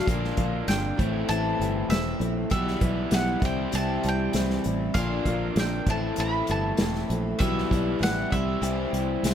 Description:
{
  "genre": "folk rock and heartland rock",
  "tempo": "98 BPM",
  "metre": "4/4",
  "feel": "straight",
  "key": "unclear",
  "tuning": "A4 = 440 Hz",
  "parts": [
    { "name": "bowl-back mandolin", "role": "melody", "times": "0.0-9.2 s", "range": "E5 to B5", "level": "-32 LUFS", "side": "right 2 dB", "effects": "none" },
    { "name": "picked twelve-string acoustic guitar", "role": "accompaniment", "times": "0.0-9.3 s", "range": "A2 to F4", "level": "-32 LUFS", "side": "left 4 dB", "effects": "none" },
    { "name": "crunchy overdriven guitar", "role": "riff", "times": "0.0-9.3 s", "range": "A2 to F4", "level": "-30 LUFS", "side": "equal", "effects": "none" },
    { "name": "fingered electric bass", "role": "bass", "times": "0.1-9.3 s", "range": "E1 to C2", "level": "-29 LUFS", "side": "equal", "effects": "none" },
    { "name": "unplugged drum kit", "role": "drums", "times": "0.1-9.3 s", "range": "hi-hat, kick drum, snare drum", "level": "-28 LUFS", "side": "equal", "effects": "none" }
  ],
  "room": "little or no reverb",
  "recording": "none",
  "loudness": "-23 LUFS",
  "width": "side -9 dB against mid",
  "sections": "0.1-9.3 A section",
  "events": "none",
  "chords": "0.1 Bb; 1.0 Am; 2.5 Em/B; 3.4 C; 5.0 Bb; 5.9 Am; 7.4 Em/B; 8.3 C"
}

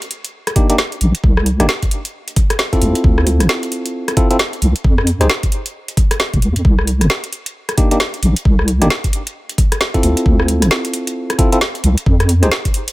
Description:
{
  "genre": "UK garage, two-step garage",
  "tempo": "133 BPM",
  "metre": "4/4",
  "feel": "swing 61% on 16ths",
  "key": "unclear",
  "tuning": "A4 = 439 Hz",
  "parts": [
    { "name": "garage drum kit", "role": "drums", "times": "0.0-12.9 s", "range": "hi-hat, rim click, snare drum", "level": "-18 LUFS", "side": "equal", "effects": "none" },
    { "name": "tine electric piano", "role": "stabs", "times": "0.6-12.5 s", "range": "Bb3 to C5", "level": "-18 LUFS", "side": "equal", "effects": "digital delay" },
    { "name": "electronic kick drum", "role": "drums", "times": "0.6-12.7 s", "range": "none", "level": "-14 LUFS", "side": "equal", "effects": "none" },
    { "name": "deep soft wobble bass", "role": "bass", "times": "1.0-12.5 s", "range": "F1 to F2", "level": "-14 LUFS", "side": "equal", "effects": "chorus" }
  ],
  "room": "digital ambience",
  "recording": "none",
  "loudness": "-13 LUFS",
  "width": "side -19 dB against mid",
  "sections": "0.0-12.9 A section",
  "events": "none",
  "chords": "0.0 Cm9; 2.8 Dm9; 4.8 F7(no3); 6.6 C7(no3); 10.0 Dm9; 12.1 F5"
}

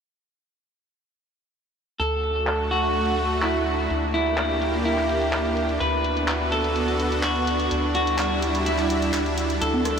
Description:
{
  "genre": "progressive house",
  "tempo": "126 BPM",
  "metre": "4/4",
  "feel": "straight",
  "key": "D major",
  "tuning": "A4 = 439 Hz",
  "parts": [
    { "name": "clean electric guitar", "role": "melody", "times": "2.0-10.0 s", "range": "E4 to B4", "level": "-24 LUFS", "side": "right 1 dB", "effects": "spring reverb, ping-pong delay" },
    { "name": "supersaw pad", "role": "sustained chords", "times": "2.2-10.0 s", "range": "G3 to G4", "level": "-26 LUFS", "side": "equal", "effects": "none" },
    { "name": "round analog bass", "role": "bass", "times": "2.0-10.0 s", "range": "D2", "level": "-29 LUFS", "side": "left 1 dB", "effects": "none" },
    { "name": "deep house drum kit", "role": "drums", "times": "2.0-10.0 s", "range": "handclaps, hi-hat", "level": "-31 LUFS", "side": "equal", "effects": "low-pass filter on hats, low-pass filter on snare" },
    { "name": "electronic congas and rim click", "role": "percussion", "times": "9.7-10.0 s", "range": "none", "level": "-25 LUFS", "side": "right 2 dB", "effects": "none" }
  ],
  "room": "wet huge ambient reverb, RT60 7.7 s",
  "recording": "dreamy mix soaked in reverb",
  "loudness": "-21 LUFS",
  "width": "side -6 dB against mid",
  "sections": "2.0-10.0 A section",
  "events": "filter sweep on drum 2.0-10.0",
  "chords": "2.0 D; 3.9 Gm/D; 5.8 Bm/D; 7.7 Em7/D"
}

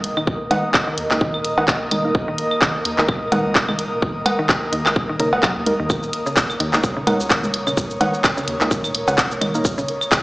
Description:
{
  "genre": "minimal techno",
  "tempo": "128 BPM",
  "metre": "4/4",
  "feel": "swing 56% on 16ths",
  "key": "unclear",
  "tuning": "A4 = 440 Hz",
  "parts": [
    { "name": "saturated sub bass", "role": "bass", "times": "0.0-10.2 s", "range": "Eb1 to Eb2", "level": "-32 LUFS", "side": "equal", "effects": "sidechain pumping" },
    { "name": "garage drum kit", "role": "drums", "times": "0.0-10.2 s", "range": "handclaps, hi-hat, shaker", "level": "-20 LUFS", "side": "equal", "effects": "small room ambience" },
    { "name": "airy breathy pad", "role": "texture", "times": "0.0-10.2 s", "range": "Bb3 to Eb6", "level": "-25 LUFS", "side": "equal", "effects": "chorus, sidechain pumping" },
    { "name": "flickering grainy texture", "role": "texture", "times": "0.0-10.2 s", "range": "Bb4", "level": "-32 LUFS", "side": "equal", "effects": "none" },
    { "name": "mallet-like synth pluck", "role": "riff", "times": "0.2-10.2 s", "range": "Db3 to Gb3", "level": "-28 LUFS", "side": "equal", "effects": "chorus, sidechain pumping, dub echo" },
    { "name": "electronic claves, toms and cowbell", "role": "percussion", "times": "0.2-10.1 s", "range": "none", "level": "-22 LUFS", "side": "right 1 dB", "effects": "small room ambience, dub echo" },
    { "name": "electronic kick drum", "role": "drums", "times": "0.3-10.2 s", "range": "none", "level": "-21 LUFS", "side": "equal", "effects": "small room ambience" },
    { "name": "percussive organ stab", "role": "stabs", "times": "1.1-9.6 s", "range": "Bb3 to Bb4", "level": "-26 LUFS", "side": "right 1 dB", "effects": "none" }
  ],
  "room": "moderate lush hall reverb, RT60 1.6 s",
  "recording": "played on a big sound system in a bare room, large studio reverb, small speaker sound",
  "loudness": "-17 LUFS",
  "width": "side -21 dB against mid",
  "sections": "0.0-10.2 A section",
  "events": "none",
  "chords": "0.0 Eb5"
}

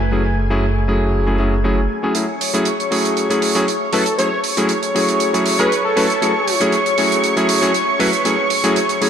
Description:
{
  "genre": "nu-disco, nu disco",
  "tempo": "118 BPM",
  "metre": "4/4",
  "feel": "straight",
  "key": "F# minor",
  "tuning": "A4 = 440 Hz",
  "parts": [
    { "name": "lush unison pad", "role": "sustained chords", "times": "0.0-9.1 s", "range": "A3 to C#6", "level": "-20 LUFS", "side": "equal", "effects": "chorus" },
    { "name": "chorused synth bass", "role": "bass", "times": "0.0-1.9 s", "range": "F#1", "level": "-18 LUFS", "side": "equal", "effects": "none" },
    { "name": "warm electric grand piano", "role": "accompaniment", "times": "0.1-9.1 s", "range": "F#3 to B4", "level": "-18 LUFS", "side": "left 1 dB", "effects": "tape echo" },
    { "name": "hi-hat", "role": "drums", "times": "2.1-9.1 s", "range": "none", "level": "-23 LUFS", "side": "right 6 dB", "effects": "low-pass filter on hats, studio reverb, low-pass filter on room" },
    { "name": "wide unison lead", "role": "melody", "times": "3.9-6.6 s", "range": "A4 to C#5", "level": "-22 LUFS", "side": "equal", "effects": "tape echo" }
  ],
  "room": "wet plate reverb, RT60 2.1 s",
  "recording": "dreamy mix soaked in reverb",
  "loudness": "-14 LUFS",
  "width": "side -8 dB against mid",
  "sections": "0.0-2.2 A section; 2.2-9.1 B section",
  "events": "build-up 2.2-9.1",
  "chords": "0.0 F#m9"
}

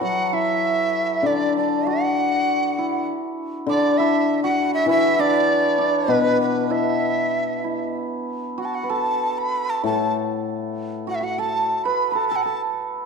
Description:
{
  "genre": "chinese traditional, Chinese chamber ensemble",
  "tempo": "98 BPM",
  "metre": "4/4",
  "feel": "rubato",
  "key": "D gong mode",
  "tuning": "A4 = 440 Hz",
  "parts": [
    { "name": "breathy large dizi", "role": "melody", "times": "0.0-12.6 s", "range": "B4 to B5+22c", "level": "-22 LUFS", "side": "equal", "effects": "none" },
    { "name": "hammered dulcimer", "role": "second line", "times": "0.0-13.1 s", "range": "B3 to B4", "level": "-24 LUFS", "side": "right 4 dB", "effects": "none" },
    { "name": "hammered dulcimer", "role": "accompaniment", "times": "0.0-11.7 s", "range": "A2 to F#3", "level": "-24 LUFS", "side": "left 7 dB", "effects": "none" }
  ],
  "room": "wet recital hall reverb, RT60 1.5 s",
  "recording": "dark, warm production",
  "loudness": "-19 LUFS",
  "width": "side -5 dB against mid",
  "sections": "0.0-13.1 A section",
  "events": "none",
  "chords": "none"
}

